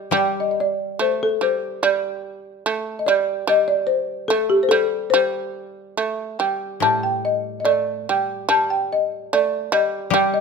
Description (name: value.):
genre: japanese traditional, Japanese chamber music.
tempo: 72 BPM.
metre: 2/4.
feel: rubato.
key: unclear.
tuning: A4 = 439 Hz.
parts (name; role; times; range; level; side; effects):
folk marimba with soft mallets; melody; 0.0-10.4 s; G4 to A5; -19 LUFS; left 1 dB; none.
shamisen; second line; 0.0-10.4 s; G3 to A3; -25 LUFS; right 6 dB; none.
koto; accompaniment; 0.1-2.6, 6.8-10.4 s; A2 to G3; -26 LUFS; left 7 dB; none.
room: light reverb.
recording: close, detailed microphones.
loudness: -18 LUFS.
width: side -5 dB against mid.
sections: 0.1-10.4 A section.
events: none.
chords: none.